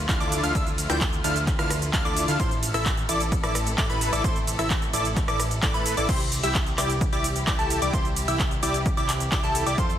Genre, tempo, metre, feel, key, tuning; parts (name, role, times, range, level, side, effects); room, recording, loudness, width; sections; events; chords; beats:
EDM, festival progressive house; 130 BPM; 4/4; straight; A4 = 441 Hz
rich studio string section; sustained chords; 0.0-10.0 s; C3 to A4; -35 LUFS; left 1 dB; sidechain pumping
fat analog bass; bass; 0.0-10.0 s; A1 to A2; -30 LUFS; equal; sidechain pumping
plucky unison lead; arpeggios; 0.1-9.9 s; A5 to G6; -30 LUFS; equal; sidechain pumping, digital delay
dense compressed supersaw; riff; 0.1-9.9 s; D4 to G5; -29 LUFS; equal; sidechain pumping, digital delay
big-room dance drum kit; drums; 0.1-10.0 s; cabasa, crash cymbal, handclaps, hi-hat, ride cymbal, rim click; -29 LUFS; right 1 dB; overdrive
electronic kick drum; drums; 0.1-9.9 s; -26 LUFS; equal; overdrive
light reverb; dense, heavily limited modern master; -22 LUFS; side -10 dB against mid
0.0-6.1 A section; 6.1-10.0 A section
drop 0.0-6.1, 6.1-10.0
0.0 Dmadd9; 2.4 Am; 6.1 C
0.09 | 0.55 1.01 1.47 1.94 | 2.40 2.86 3.32 3.78 | 4.24 4.70 5.17 5.63 | 6.09 6.55 7.01 7.47 | 7.93 8.40 8.86 9.32 | 9.78